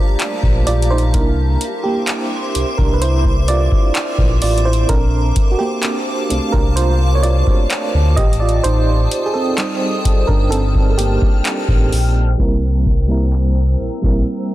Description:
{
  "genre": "contemporary R&B",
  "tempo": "64 BPM",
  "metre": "4/4",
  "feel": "straight",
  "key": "unclear",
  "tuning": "A4 = 440 Hz",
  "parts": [
    { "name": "FM electric piano with tremolo", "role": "accompaniment", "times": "0.0-14.5 s", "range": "G3 to Eb5", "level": "-20 LUFS", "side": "right 3 dB", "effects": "none" },
    { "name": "granular cloud pad", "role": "sustained chords", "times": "0.0-14.5 s", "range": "G4 to F6", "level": "-25 LUFS", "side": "left 2 dB", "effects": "built-in reverb, sidechain pumping" },
    { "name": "booming analog drum machine", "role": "drums", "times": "0.2-14.5 s", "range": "crash cymbal, handclaps, hi-hat, kick drum", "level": "-17 LUFS", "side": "equal", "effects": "none" },
    { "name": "sub bass with octave", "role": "bass", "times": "0.4-14.2 s", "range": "G1 to D2", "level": "-16 LUFS", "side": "equal", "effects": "none" }
  ],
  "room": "little or no reverb",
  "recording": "dense, heavily limited modern master, low-pass filter",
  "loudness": "-13 LUFS",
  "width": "side -15 dB against mid",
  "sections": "0.0-12.4 A section; 12.4-14.5 B section",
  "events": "FM electric piano solo 0.0-12.4; filter sweep 12.4-14.5",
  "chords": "0.0 Gm9; 1.1 C9; 4.9 Bbmaj7; 8.2 Am7b5; 12.4 C7",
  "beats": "0.20 | 1.14 2.08 3.01 3.95 | 4.89 5.83 6.76 7.70 | 8.64 9.58 10.51 11.45 | 12.39 13.33 14.26"
}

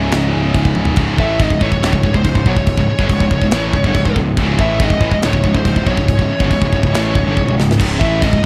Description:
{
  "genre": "heavy metal",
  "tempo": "141 BPM",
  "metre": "4/4",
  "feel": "straight",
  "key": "C# minor",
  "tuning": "A4 = 440 Hz",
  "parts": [
    { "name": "dark studio string section", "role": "sustained chords", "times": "0.0-8.5 s", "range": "C#4 to E5", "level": "-30 LUFS", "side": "equal", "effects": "none" },
    { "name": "fuzz guitar", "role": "riff", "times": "0.0-8.5 s", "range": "C#2 to A3", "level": "-25 LUFS", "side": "equal", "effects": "none" },
    { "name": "heavy high-gain guitar", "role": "riff", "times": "0.0-8.4 s", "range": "C#2 to A3", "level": "-23 LUFS", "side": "equal", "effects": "distortion" },
    { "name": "scooped high-gain guitar", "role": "riff", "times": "0.0-8.5 s", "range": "C#2 to A3", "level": "-26 LUFS", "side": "equal", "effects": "none" },
    { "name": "fuzz picked electric bass", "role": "bass", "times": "0.0-8.4 s", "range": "C#1 to B1", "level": "-21 LUFS", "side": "equal", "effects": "overdrive" },
    { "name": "tight metal drum kit", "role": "drums", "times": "0.1-8.4 s", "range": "china cymbal, crash cymbal, kick drum, snare drum, toms", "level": "-19 LUFS", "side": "equal", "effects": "none" },
    { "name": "high-gain lead guitar", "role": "melody", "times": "1.2-8.5 s", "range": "B#4 to E5", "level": "-23 LUFS", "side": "equal", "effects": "distortion, tape echo" }
  ],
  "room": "little or no reverb",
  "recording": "none",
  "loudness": "-15 LUFS",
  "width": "mono",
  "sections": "1.0-8.5 A section",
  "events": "drum fill 0.8, 7.4-7.8",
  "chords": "0.0 C#m",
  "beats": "0.13 0.56 | 0.98 1.41 1.83 2.26 | 2.68 3.11 3.53 3.96 | 4.38 4.81 5.24 5.66 | 6.09 6.51 6.94 7.37 | 7.79 8.22"
}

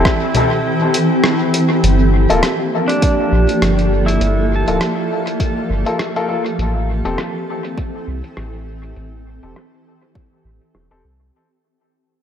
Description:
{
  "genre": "ambient dub",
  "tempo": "101 BPM",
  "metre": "4/4",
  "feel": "swing 56% on 16ths",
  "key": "unclear",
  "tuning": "A4 = 435 Hz",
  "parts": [
    { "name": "granular cloud pad", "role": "sustained chords", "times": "0.0-11.3 s", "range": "E3 to A4", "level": "-18 LUFS", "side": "equal", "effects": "built-in reverb" },
    { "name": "pedal steel guitar", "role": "arpeggios", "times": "0.0-6.8 s", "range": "D4 to A5", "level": "-24 LUFS", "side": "right 2 dB", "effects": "tape echo" },
    { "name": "warm upright piano", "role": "stabs", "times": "0.0-11.0 s", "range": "Bb3 to A4", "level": "-22 LUFS", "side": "left 3 dB", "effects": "low-pass filter, dub echo" },
    { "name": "soft dub sub bass", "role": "bass", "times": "0.0-11.3 s", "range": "D1 to C2", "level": "-18 LUFS", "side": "equal", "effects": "none" },
    { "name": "electronic kick drum", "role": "drums", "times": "0.1-10.3 s", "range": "none", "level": "-18 LUFS", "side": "equal", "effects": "overdrive" },
    { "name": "lo-fi sampler-style drum kit", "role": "drums", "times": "0.1-11.3 s", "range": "congas, hi-hat, rim click", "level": "-22 LUFS", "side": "equal", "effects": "overdrive, low-pass filter on hats, low-pass filter on perc, low-pass filter on snare, dub echo" }
  ],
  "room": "moderate scoring stage reverb, RT60 2.1 s",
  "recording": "none",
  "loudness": "-14 LUFS",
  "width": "side -8 dB against mid",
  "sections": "0.0-1.8 A section; 1.8-11.3 B section",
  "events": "fade-out 1.8-11.3; filter sweep on drum 1.8-11.3",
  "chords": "0.0 Am7; 1.8 Gm9; 6.6 Am7",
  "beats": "0.05 0.65 1.24 | 1.83 2.43 3.02 3.62 | 4.21 4.80 5.40 5.99 | 6.58 7.18 7.77 8.37 | 8.96 9.55 10.15 10.74"
}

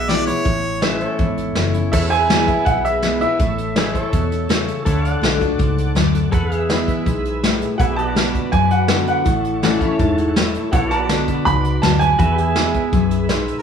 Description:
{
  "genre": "honky-tonk and classic country",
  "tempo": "164 BPM",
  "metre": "4/4",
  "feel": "straight",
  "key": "A major",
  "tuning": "A4 = 440 Hz",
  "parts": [
    { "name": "clear harmonica", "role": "melody", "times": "0.0-1.0, 13.6 s", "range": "Bb4 to E5", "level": "-22 LUFS", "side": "left 1 dB", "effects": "plate reverb" },
    { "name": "picked steel-string acoustic guitar", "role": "accompaniment", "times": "0.0-13.6 s", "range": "E2 to F#4", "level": "-22 LUFS", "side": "left 5 dB", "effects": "none" },
    { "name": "pedal steel guitar", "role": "sustained chords", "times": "0.0-13.6 s", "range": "E4 to F#5", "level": "-26 LUFS", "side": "left 1 dB", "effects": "none" },
    { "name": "vintage muted fingered electric bass", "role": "bass", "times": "0.0-13.5 s", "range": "E1 to F#2", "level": "-22 LUFS", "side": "equal", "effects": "none" },
    { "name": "soft brush drum kit", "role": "drums", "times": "0.1-13.6 s", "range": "crash cymbal, hi-hat, kick drum, snare drum", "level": "-21 LUFS", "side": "right 1 dB", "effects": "none" },
    { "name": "clear upright piano", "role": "second line", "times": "1.9-3.9, 7.8-13.2 s", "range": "E5 to B5", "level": "-20 LUFS", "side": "right 4 dB", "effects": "none" },
    { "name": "tonewheel organ", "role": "accompaniment", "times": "1.9-13.6 s", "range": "E4 to B5", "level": "-27 LUFS", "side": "right 4 dB", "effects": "slow rotary speaker, chorus vibrato" }
  ],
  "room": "moderate large studio reverb, RT60 1.1 s",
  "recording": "small room ambience",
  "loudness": "-15 LUFS",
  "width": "side -7 dB against mid",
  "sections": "0.0-1.9 A section; 1.9-13.6 B section",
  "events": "upright piano solo 1.9-13.6; tonewheel organ fill 9.6-10.7",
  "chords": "0.5 A; 1.9 E; 3.4 A; 4.9 D; 6.3 E; 7.8 Bm; 9.3 A; 10.7 Bm; 12.2 E",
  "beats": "0.10 | 0.46 0.83 1.20 1.56 | 1.93 2.29 2.66 3.03 | 3.40 3.76 4.13 4.50 | 4.86 5.23 5.59 5.96 | 6.33 6.70 7.06 7.43 | 7.79 8.16 8.53 8.89 | 9.26 9.63 9.99 10.36 | 10.73 11.09 11.46 11.83 | 12.19 12.56 12.93 13.29"
}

